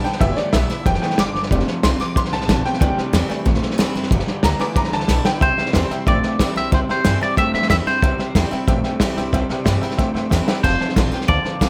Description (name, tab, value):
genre	rockabilly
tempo	184 BPM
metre	4/4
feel	straight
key	C major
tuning	A4 = 440 Hz
part	picked steel-string acoustic guitar	accompaniment	0.0-11.7 s	F2 to F4	-31 LUFS	equal	none
part	tack piano	accompaniment	0.0-11.7 s	E3 to D6	-27 LUFS	equal	none
part	electric guitar through a small old amp	riff	0.0-11.7 s	F2 to A3	-28 LUFS	equal	none
part	upright bass	bass	0.0-11.7 s	F1 to A2	-25 LUFS	equal	none
part	vintage drum kit	drums	0.0-11.7 s	hi-hat, kick drum, snare drum, splash cymbal	-22 LUFS	equal	none
part	twangy electric guitar	melody	5.4-8.5, 10.6-11.7 s	C5 to E5	-24 LUFS	equal	phaser, tape echo
room	light reverb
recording	none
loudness	-19 LUFS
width	mono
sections	0.0-5.4 A section; 5.4-11.7 B section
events	honky-tonk piano solo 0.0-5.4; drum fill 5.1-5.4, 10.3-10.6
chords	0.0 G6; 1.5 F6; 2.8 C6; 4.1 G6; 5.4 C6; 10.6 F6